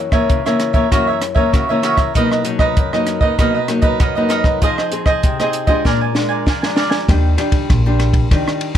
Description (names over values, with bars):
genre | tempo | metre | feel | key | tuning
samba and choro | 97 BPM | 4/4 | straight | unclear | A4 = 440 Hz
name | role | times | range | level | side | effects
nylon-string guitar | accompaniment | 0.0-8.8 s | Gb2 to Ab4 | -19 LUFS | left 3 dB | none
cavaquinho | accompaniment | 0.1-7.1 s | D4 to Ab5 | -18 LUFS | right 3 dB | none
compact cocktail drum kit | drums | 0.1-8.8 s | hi-hat, kick drum, ride cymbal, rim click, snare drum | -17 LUFS | equal | none
upright bass | bass | 7.1-8.8 s | Bb1 to Eb3 | -15 LUFS | equal | none
room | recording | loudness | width
little or no reverb | close, detailed microphones | -13 LUFS | side -10 dB against mid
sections
0.0-7.1 A section; 7.1-8.8 B section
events
drum fill 5.9-7.1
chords
0.0 Gb7; 2.2 Bmaj7; 4.6 Fm7; 5.9 Bb7; 7.1 Ebmaj9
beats
0.30 0.92 1.53 | 2.15 2.77 3.39 4.00 | 4.62 5.24 5.85 6.47 | 7.08 7.70 8.31